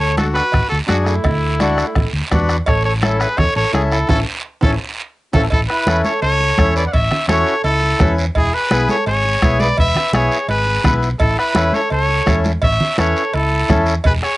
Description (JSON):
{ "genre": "latin, cumbia", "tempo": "169 BPM", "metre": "4/4", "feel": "straight", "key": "A major", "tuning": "A4 = 440 Hz", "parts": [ { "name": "bright trumpet", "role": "melody", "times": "0.0-14.4 s", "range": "E4 to F#5", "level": "-19 LUFS", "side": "equal", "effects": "cassette tape" }, { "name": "electric guitar at the edge of break-up", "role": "second line", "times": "0.0-14.4 s", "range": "A3 to D5", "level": "-24 LUFS", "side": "right 1 dB", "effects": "none" }, { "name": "hollow-body short-scale fingered electric bass", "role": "bass", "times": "0.0-14.2 s", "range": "E1 to F#2", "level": "-19 LUFS", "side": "equal", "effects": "none" }, { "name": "accordion", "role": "accompaniment", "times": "0.2-13.9 s", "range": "B3 to B4", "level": "-20 LUFS", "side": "left 2 dB", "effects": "none" }, { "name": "bombo", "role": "percussion", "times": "0.2-14.4 s", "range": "none", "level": "-18 LUFS", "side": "equal", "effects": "none" }, { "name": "congas", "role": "percussion", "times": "0.2-13.9 s", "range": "none", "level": "-21 LUFS", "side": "right 1 dB", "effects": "none" }, { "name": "cowbell and timbales", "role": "percussion", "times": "0.2-14.2 s", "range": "none", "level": "-26 LUFS", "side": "right 3 dB", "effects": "none" }, { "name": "guiro", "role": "percussion", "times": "0.2-14.4 s", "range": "none", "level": "-28 LUFS", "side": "right 3 dB", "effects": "none" } ], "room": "light reverb", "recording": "home recording on cassette, nothing above 11.0 kHz", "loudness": "-14 LUFS", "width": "side -18 dB against mid", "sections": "0.0-5.5 A section; 5.5-14.4 B section", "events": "band accent 4.1-5.5; drum fill 4.6-5.5", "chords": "0.0 D; 2.7 A; 8.4 E; 11.2 A" }